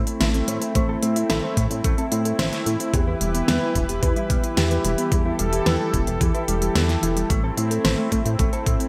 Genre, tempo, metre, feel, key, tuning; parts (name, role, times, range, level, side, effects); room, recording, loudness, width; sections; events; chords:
synthwave; 110 BPM; 4/4; straight; A minor; A4 = 443 Hz
warm analog pad; sustained chords; 0.0-8.9 s; E3 to B4; -28 LUFS; equal; chorus, sidechain pumping
chorused synth bass; bass; 0.0-8.8 s; E1 to A2; -27 LUFS; equal
thumb-piano-like synth pluck; arpeggios; 0.1-8.9 s; G3 to C5; -31 LUFS; equal; chorus, delay
pop drum kit; drums; 0.1-8.9 s; hi-hat, snare drum; -29 LUFS; equal; small room ambience
mellow electric guitar; riff; 0.2-8.7 s; E3 to A4; -33 LUFS; equal; subtle chorus, low-pass filter, delay
electronic kick drum; drums; 0.8-8.8 s; -26 LUFS; equal; small room ambience
moderate plate reverb, RT60 2.0 s; bright 1980s-style digital production; -22 LUFS; mono
0.0-8.9 A section
filter sweep on synth arpeggio sound 0.0-8.9
0.0 Am; 2.9 Em; 7.3 Am